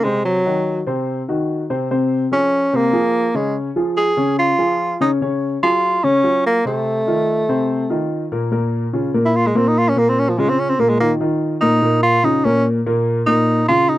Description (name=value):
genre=jazz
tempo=145 BPM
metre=4/4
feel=straight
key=Bb minor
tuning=A4 = 440 Hz
part: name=warm tenor saxophone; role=melody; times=0.0-14.0 s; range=F3 to Ab4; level=-16 LUFS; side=right 1 dB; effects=none
part: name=warm baby grand piano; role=accompaniment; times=0.0-14.0 s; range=Bb2 to Db5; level=-18 LUFS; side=left 1 dB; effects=none
room=little or no reverb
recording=dry, close 1970s-style studio recording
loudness=-15 LUFS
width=side -15 dB against mid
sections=0.0-8.5 A section; 8.5-14.0 B section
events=tenor saxophone solo 8.5-14.0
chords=0.2 Cdim; 1.9 Dbmaj7; 3.6 Db; 5.2 Gbsus2; 6.9 F7; 8.5 Bbm; 9.3 N.C.; 10.2 Bbm; 11.0 F7sus4; 11.8 Bbm; 12.6 N.C.; 13.5 Bbm